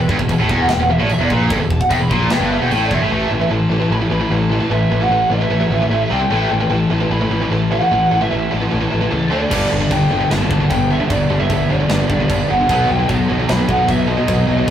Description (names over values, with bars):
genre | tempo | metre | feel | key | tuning
heavy metal | 150 BPM | 4/4 | straight | unclear | A4 = 438 Hz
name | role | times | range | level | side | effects
bluesy overdriven lead guitar | melody | 0.0-14.7 s | G#4 to C6 | -20 LUFS | equal | distortion, tape echo
crunchy overdriven guitar | riff | 0.0-3.1, 9.5-14.7 s | E2 to D#4 | -25 LUFS | equal | none
heavy high-gain guitar | riff | 0.0-14.7 s | E2 to D4 | -20 LUFS | right 3 dB | distortion
tight distorted guitar | riff | 0.0-14.7 s | E2 to D4 | -22 LUFS | left 4 dB | distortion
fuzz picked electric bass | bass | 0.0-14.6 s | E1 to D2 | -20 LUFS | equal | overdrive
tight metal drum kit | drums | 0.1-3.0, 9.5-14.7 s | china cymbal, crash cymbal, kick drum, snare drum | -22 LUFS | equal | none
room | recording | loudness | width
wet booth ambience, RT60 0.2 s | rough rehearsal-room recording | -14 LUFS | side -10 dB against mid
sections
0.0-3.1 A section; 3.1-14.7 B section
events
lead electric guitar solo 0.0-3.1; drum fill 2.9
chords
0.0 Em; 3.1 A5; 6.1 C5; 6.3 A5; 9.3 D5; 9.5 G; 12.7 B